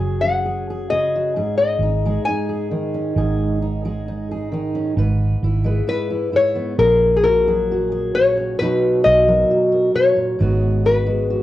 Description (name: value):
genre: acoustic folk-pop ballad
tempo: 66 BPM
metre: 4/4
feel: straight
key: unclear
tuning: A4 = 440 Hz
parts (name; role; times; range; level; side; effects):
- nylon-string guitar; melody; 0.0-11.4 s; G#4 to G#5; -18 LUFS; left 2 dB; none
- fingerpicked steel-string acoustic guitar; accompaniment; 0.0-11.4 s; G#2 to B4; -21 LUFS; right 1 dB; cassette tape
- vintage muted fingered electric bass; bass; 0.0-11.4 s; F#1 to B1; -21 LUFS; right 2 dB; none
room: moderate studio reverb, RT60 0.6 s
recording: home recording on cassette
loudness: -16 LUFS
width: side -14 dB against mid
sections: 0.0-11.4 A section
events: none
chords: 0.0 F#sus2; 1.3 G#sus4; 5.0 E6/G#; 6.8 F#add9/A#; 8.6 Bmaj7; 10.4 G#m7